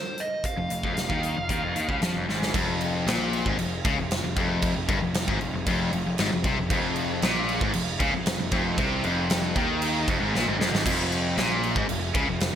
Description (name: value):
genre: hard rock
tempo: 115 BPM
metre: 4/4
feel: straight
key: F minor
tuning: A4 = 441 Hz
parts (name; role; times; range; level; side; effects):
- dark smooth lead guitar; melody; 0.0-2.0 s; C5 to F5; -32 LUFS; right 2 dB; overdrive, digital delay
- huge arena drum kit; drums; 0.2-12.5 s; crash cymbal, hi-hat, kick drum, snare drum; -28 LUFS; right 1 dB; gated reverb
- cranked stack guitar; riff; 0.6-2.5, 6.7-12.6 s; F2 to F3; -32 LUFS; right 8 dB; overdrive
- crunchy overdriven guitar; riff; 0.6-12.5 s; F2 to F3; -28 LUFS; left 6 dB; spring reverb
- fuzz picked electric bass; bass; 0.6-12.5 s; F1 to F2; -31 LUFS; equal; overdrive
- distorted electric guitar; riff; 2.5-12.5 s; F2 to Eb3; -31 LUFS; right 1 dB; overdrive
room: moderate lush hall reverb, RT60 1.6 s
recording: bright 1980s-style digital production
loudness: -23 LUFS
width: side -9 dB against mid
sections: 0.0-2.5 A section; 2.5-10.9 B section; 10.9-12.6 B section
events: drum fill 2.3, 10.3-10.9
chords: 0.0 Fm